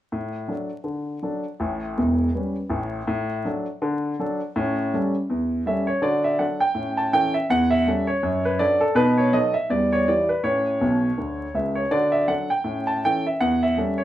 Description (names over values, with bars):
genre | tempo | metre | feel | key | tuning
jazz, stride piano | 163 BPM | 4/4 | swing 58% on 8ths | D major | A4 = 440 Hz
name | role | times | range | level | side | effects
warm grand piano | solo | 0.1-14.0 s | E1 to A5 | -20 LUFS | equal | none
room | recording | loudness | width
wet studio reverb, RT60 0.5 s | heard from further back in the room, vinyl crackle | -20 LUFS | side -13 dB against mid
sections
0.1-6.0 A section; 6.0-14.0 B section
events
grand piano fill 10.8-11.9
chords
0.1 D/A; 1.6 A9; 3.1 D/A; 4.6 A7; 6.0 D; 6.8 A; 7.5 A7/E; 8.2 D/F#; 9.0 B7; 9.7 Em; 10.5 A; 11.9 D; 12.7 A; 13.4 A7/E